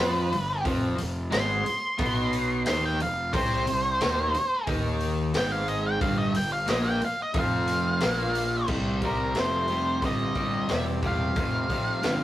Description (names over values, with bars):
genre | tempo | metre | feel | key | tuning
blues rock power trio and southern rock | 90 BPM | 4/4 | straight | unclear | A4 = 440 Hz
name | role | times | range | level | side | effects
octave-fuzz lead guitar | melody | 0.0-12.2 s | Bb4 to C6 | -28 LUFS | equal | distortion
overdriven semi-hollow guitar | riff | 0.0-12.2 s | F2 to F4 | -29 LUFS | equal | spring reverb
fuzz fingered electric bass | bass | 0.0-12.2 s | E1 to F2 | -31 LUFS | equal | overdrive
raw garage drum kit | drums | 0.3-12.2 s | crash cymbal, hi-hat, kick drum, snare drum | -30 LUFS | equal | none
room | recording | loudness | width
moderate studio reverb, RT60 0.6 s | rough rehearsal-room recording | -24 LUFS | side -14 dB against mid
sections
0.0-8.7 A section; 8.7-12.2 B section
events
lead electric guitar solo 0.0-8.7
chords
0.0 G7; 0.7 F5; 3.3 Cm; 4.7 Fm9 (rootless); 6.0 Fsus4; 8.7 C; 11.4 F5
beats
| 0.66 1.33 2.00 2.67 | 3.34 4.01 4.67 5.34 | 6.01 6.68 7.35 8.02 | 8.69 9.35 10.02 10.69 | 11.36 12.03